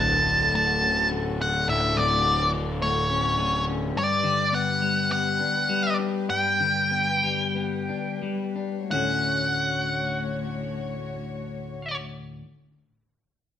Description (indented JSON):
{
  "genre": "rock",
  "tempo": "84-106 BPM",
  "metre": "4/4",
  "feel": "straight",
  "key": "D major",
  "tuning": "A4 = 440 Hz",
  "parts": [
    { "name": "octave-fuzz lead guitar", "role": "melody", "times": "0.0-12.0 s", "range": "C#5 to A5", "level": "-24 LUFS", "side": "equal", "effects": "distortion" },
    { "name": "warm chamber string section", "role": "sustained chords", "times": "0.0-12.0 s", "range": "D3 to C#5", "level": "-35 LUFS", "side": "left 4 dB", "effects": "none" },
    { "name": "clean electric guitar", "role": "arpeggios", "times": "0.0-12.4 s", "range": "D2 to F#4", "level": "-29 LUFS", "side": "left 3 dB", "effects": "none" },
    { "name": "fuzz picked electric bass", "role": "bass", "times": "0.0-3.9 s", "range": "D1", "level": "-29 LUFS", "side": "equal", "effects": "overdrive" }
  ],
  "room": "wet stone room reverb, RT60 1.1 s",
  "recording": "band playing live in one room",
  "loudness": "-22 LUFS",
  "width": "side -10 dB against mid",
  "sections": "0.0-8.9 A section; 8.9-11.8 B section",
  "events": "slowing down 4.0-8.9",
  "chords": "0.0 Dmaj7; 4.0 Gmaj7; 8.9 Dmaj7"
}